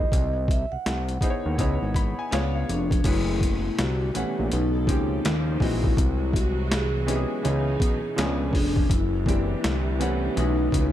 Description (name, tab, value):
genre	R&B, neo-soul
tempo	82 BPM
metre	4/4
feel	swing 62% on 16ths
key	unclear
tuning	A4 = 437 Hz
part	vibraphone with soft mallets	melody	0.0-10.9 s	D4 to F#5	-30 LUFS	left 2 dB	slapback echo
part	clear concert grand piano	accompaniment	0.0-10.9 s	E3 to B5	-30 LUFS	equal	none
part	fat analog bass	bass	0.0-10.9 s	E#1 to D#2	-26 LUFS	equal	none
part	boom bap sampler-style drum kit	drums	0.1-10.9 s	crash cymbal, hi-hat, kick drum, snare drum	-26 LUFS	equal	overdrive
part	warm studio string section	sustained chords	3.0-10.9 s	A2 to A4	-35 LUFS	right 2 dB	stereo widening
room	small room ambience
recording	dark, warm production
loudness	-22 LUFS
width	side -12 dB against mid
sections	0.0-3.0 A section; 3.0-10.9 B section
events	grand piano fill 1.6-3.0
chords	0.1 G#7b13/B#; 1.6 C#m9; 2.3 C#7b9; 3.0 F#m11; 3.8 C9; 4.5 Bsus2; 5.2 D#13; 6.0 G#7b13/B#; 7.4 C#m9; 8.2 C#7b9; 8.9 F#sus2; 9.6 Cadd9; 10.4 B9sus4